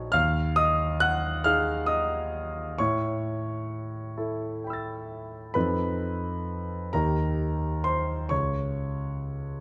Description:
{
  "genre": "classical, impressionist solo piano",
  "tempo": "44 BPM (dotted quarters)",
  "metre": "6/8",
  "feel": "uneven beats, rubato",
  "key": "unclear",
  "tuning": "A4 = 440 Hz",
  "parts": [
    { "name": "warm concert grand piano", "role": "solo", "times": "0.0-9.6 s", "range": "Bb1 to A6", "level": "-28 LUFS", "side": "equal", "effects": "none" }
  ],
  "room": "moderate recital hall reverb, RT60 1.5 s",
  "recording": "close, detailed microphones",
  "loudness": "-28 LUFS",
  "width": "mono",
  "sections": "0.0-9.6 A section",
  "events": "none",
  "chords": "0.1 Ebmadd9; 2.8 A9; 5.6 F7#11; 6.9 Eb; 8.3 N.C.",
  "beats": "| 0.15 1.45 | 2.79 4.17 | 5.55 6.92 | 8.31"
}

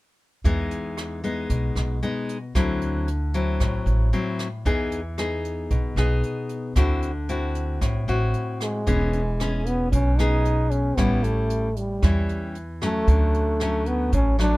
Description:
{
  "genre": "bossa nova",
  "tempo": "114 BPM",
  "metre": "4/4",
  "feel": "straight",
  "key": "E major",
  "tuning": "A4 = 441 Hz",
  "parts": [
    { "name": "nylon-string guitar", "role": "accompaniment", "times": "0.4-14.6 s", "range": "A2 to G#4", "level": "-27 LUFS", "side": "left 2 dB", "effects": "none" },
    { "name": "upright bass", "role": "bass", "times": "0.4-14.6 s", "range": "E1 to E2", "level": "-24 LUFS", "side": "equal", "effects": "none" },
    { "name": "jazz brush drum kit", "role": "drums", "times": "0.4-14.5 s", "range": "hi-hat, kick drum, rim click", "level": "-28 LUFS", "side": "equal", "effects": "none" },
    { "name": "breathy trombone", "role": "melody", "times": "8.6-14.6 s", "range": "G3 to D#4", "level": "-25 LUFS", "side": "equal", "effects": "none" }
  ],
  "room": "little or no reverb",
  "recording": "none",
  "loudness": "-21 LUFS",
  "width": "side -20 dB against mid",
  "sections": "0.4-8.9 A section; 8.9-14.6 B section",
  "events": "none",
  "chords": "0.4 Emaj7; 2.5 D9; 4.7 Emaj7; 6.8 D9; 8.9 E6; 11.0 A7; 13.1 Dmaj7",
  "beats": "| 0.44 0.97 1.50 2.02 | 2.55 3.08 3.60 4.13 | 4.66 5.18 5.71 6.23 | 6.76 7.29 7.81 8.34 | 8.87 9.39 9.92 10.45 | 10.97 11.50 12.03 12.55 | 13.08 13.60 14.13"
}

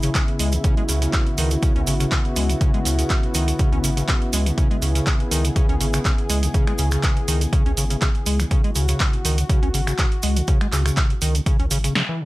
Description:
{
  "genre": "acid house",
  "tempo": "122 BPM",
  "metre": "4/4",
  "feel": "swing 54% on 16ths",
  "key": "C# minor",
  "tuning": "A4 = 440 Hz",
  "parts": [
    { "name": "warm analog pad", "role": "sustained chords", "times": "0.0-11.9 s", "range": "C#3 to G#4", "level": "-27 LUFS", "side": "left 1 dB", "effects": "chorus, sidechain pumping" },
    { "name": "overdriven acid bass", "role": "riff", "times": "0.0-12.2 s", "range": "B2 to C#4", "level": "-26 LUFS", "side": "equal", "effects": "tube saturation, analog chorus, analog delay" },
    { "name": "warm sub bass", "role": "bass", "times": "0.0-11.9 s", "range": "G#1 to C#2", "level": "-22 LUFS", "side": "equal", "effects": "sidechain pumping" },
    { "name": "punchy analog drum machine", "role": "drums", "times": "0.0-12.1 s", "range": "finger snaps, handclaps, hi-hat, snare drum", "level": "-26 LUFS", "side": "right 1 dB", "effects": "none" },
    { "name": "maracas", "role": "percussion", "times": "0.0-11.9 s", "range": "none", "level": "-30 LUFS", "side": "right 2 dB", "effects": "none" },
    { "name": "electronic kick drum", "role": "drums", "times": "0.1-11.6 s", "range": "none", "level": "-20 LUFS", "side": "equal", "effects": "none" }
  ],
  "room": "light reverb",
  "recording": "none",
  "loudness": "-18 LUFS",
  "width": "side -19 dB against mid",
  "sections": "0.0-12.2 A section",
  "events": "drum fill 12.0",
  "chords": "0.0 C#m7",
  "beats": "0.15 | 0.64 1.13 1.62 2.12 | 2.61 3.10 3.59 4.08 | 4.58 5.07 5.56 6.05 | 6.54 7.04 7.53 8.02 | 8.51 9.00 9.49 9.99 | 10.48 10.97 11.46 11.95"
}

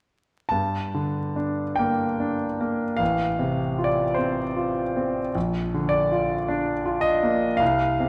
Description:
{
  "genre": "classical, romantic nocturne for solo piano",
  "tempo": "47-54 BPM",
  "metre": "4/4",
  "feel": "rubato",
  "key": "G minor",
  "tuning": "A4 = 439 Hz",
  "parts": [
    { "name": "clear concert grand piano", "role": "solo", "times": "0.5-8.1 s", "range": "A1 to A5", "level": "-24 LUFS", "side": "equal", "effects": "none" }
  ],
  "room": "moderate concert hall reverb, RT60 1.9 s",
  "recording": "vinyl crackle",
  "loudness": "-24 LUFS",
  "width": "mono",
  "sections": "0.5-8.1 A section",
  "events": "none",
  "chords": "0.5 Gm; 3.0 F/A; 5.4 Bb",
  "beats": "| 0.53 1.79 3.00 4.17 | 5.35 6.49 7.61"
}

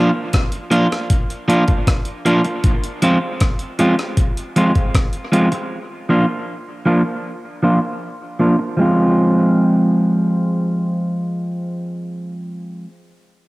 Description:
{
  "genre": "dub reggae",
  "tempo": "78 BPM",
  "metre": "4/4",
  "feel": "straight",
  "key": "F dorian",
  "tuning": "A4 = 440 Hz",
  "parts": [
    { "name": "electric guitar at the edge of break-up", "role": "accompaniment", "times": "0.0-12.9 s", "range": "F3 to F4", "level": "-16 LUFS", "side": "equal", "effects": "spring reverb, low-pass filter, cassette tape, dub echo" },
    { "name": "breakbeat sampler-style drum kit", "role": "drums", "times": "0.3-5.7 s", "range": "hi-hat, kick drum, rim click", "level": "-17 LUFS", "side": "equal", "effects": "none" }
  ],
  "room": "moderate studio reverb, RT60 0.5 s",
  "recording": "home recording on cassette",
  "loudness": "-15 LUFS",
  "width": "side -21 dB against mid",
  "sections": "0.0-8.8 A section; 8.8-11.9 B section",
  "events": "filter sweep on clean electric guitar 0.0-8.8",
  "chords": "0.0 Bb; 2.6 Fm; 5.7 Bb; 8.8 Fm",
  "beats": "0.33 1.10 1.87 | 2.64 3.41 4.18 4.94 | 5.71 6.48 7.25 8.02 | 8.79 9.56 10.33 11.10"
}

